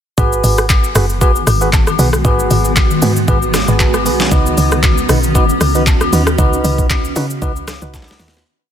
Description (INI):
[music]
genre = amapiano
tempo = 116 BPM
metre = 4/4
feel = swing 55% on 16ths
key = G# minor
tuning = A4 = 440 Hz
[part]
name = granular cloud pad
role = sustained chords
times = 1.0-8.4 s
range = D#3 to F#4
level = -19 LUFS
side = equal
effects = built-in reverb
[part]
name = percussive organ stab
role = stabs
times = 0.2-8.4 s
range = D#4 to B4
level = -20 LUFS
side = right 4 dB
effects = chorus, ping-pong delay
[part]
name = tight log drum bass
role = bass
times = 0.2-8.4 s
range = F#1 to C#3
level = -16 LUFS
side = equal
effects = none
[part]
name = smooth R&B drum kit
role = drums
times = 0.2-8.5 s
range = handclaps, hi-hat, kick drum, rim click, shaker, snare drum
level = -15 LUFS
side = equal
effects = none
[part]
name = agogo bells and woodblock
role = percussion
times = 0.2-8.2 s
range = none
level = -22 LUFS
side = left 13 dB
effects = none
[sound]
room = light reverb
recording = dense, heavily limited modern master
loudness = -11 LUFS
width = side -9 dB against mid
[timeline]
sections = 0.2-8.5 drop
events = drop 0.2-8.5; fade-out 6.4-8.5; drum fill 7.9-8.5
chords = 0.2 G#m7; 4.3 C#9sus4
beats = | 0.18 0.70 1.21 1.73 | 2.25 2.77 3.28 3.80 | 4.32 4.83 5.35 5.87 | 6.38 6.90 7.42 7.94